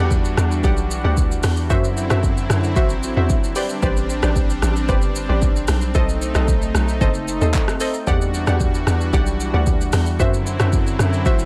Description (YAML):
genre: amapiano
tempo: 113 BPM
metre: 4/4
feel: straight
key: E minor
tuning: A4 = 440 Hz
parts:
  - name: lush unison pad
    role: sustained chords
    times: 0.0-11.5 s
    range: D3 to F#4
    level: -28 LUFS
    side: equal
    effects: chorus
  - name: glassy wavetable pluck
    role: stabs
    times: 0.0-11.4 s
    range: F#4 to F#5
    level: -28 LUFS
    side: equal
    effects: chorus, digital delay
  - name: tight log drum bass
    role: bass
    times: 0.0-11.5 s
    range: F#1 to F#2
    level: -22 LUFS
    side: equal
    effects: none
  - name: deep house drum kit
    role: drums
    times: 0.1-11.5 s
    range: handclaps, hi-hat, kick drum, rim click, shaker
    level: -23 LUFS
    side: equal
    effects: none
room: digital ambience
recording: none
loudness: -19 LUFS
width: mono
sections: 0.0-11.5 A section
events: none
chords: 0.0 Em9; 1.7 D9/F#; 3.6 Am11; 6.0 B7b9; 8.1 Em9; 10.2 D9/F#